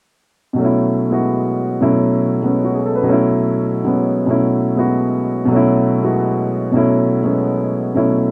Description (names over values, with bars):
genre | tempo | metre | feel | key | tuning
jazz | 196 BPM | 4/4 | swing 63% on 8ths | unclear | A4 = 443 Hz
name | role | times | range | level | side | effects
warm baby grand piano | accompaniment | 0.5-8.3 s | B2 to B4 | -16 LUFS | equal | none
room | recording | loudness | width
moderate small room reverb, RT60 0.6 s | dark, warm production | -17 LUFS | mono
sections
0.6-8.3 A section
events
none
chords
0.6 B9sus4